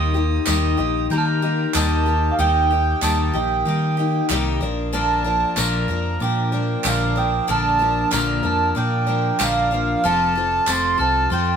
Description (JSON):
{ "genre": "indie folk with a building arrangement", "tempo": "94 BPM", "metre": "4/4", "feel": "straight", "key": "unclear", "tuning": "A4 = 440 Hz", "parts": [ { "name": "mellow accordion", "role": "melody", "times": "0.0-11.6 s", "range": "F5 to Eb6", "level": "-22 LUFS", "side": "right 4 dB", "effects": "none" }, { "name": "glockenspiel with soft plastic mallets", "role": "second line", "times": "0.0-11.6 s", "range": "C6 to Bb6", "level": "-28 LUFS", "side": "left 1 dB", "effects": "none" }, { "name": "picked twelve-string acoustic guitar", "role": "accompaniment", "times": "0.0-11.6 s", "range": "Bb2 to Bb4", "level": "-24 LUFS", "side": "left 5 dB", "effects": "none" }, { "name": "warm brass ensemble", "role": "sustained chords", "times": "0.0-11.6 s", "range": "Eb3 to A4", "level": "-32 LUFS", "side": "right 2 dB", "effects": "none" }, { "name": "fingered electric bass", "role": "bass", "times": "0.0-11.6 s", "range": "F1 to Eb3", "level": "-23 LUFS", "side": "equal", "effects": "none" }, { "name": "group handclap", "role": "percussion", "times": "0.5-10.8 s", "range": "none", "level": "-28 LUFS", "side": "right 5 dB", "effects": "none" }, { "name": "tambourine", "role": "percussion", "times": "0.5-10.8 s", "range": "none", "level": "-29 LUFS", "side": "left 3 dB", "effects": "none" } ], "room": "moderate stone room reverb, RT60 1.1 s", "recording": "band playing live in one room", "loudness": "-17 LUFS", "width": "side -7 dB against mid", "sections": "0.0-11.6 A section", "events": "none", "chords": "0.0 Eb; 4.6 Bb; 10.0 F", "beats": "0.47 1.11 1.75 | 2.38 3.02 3.66 4.30 | 4.94 5.58 6.21 6.85 | 7.49 8.12 8.76 9.39 | 10.03 10.66 11.30" }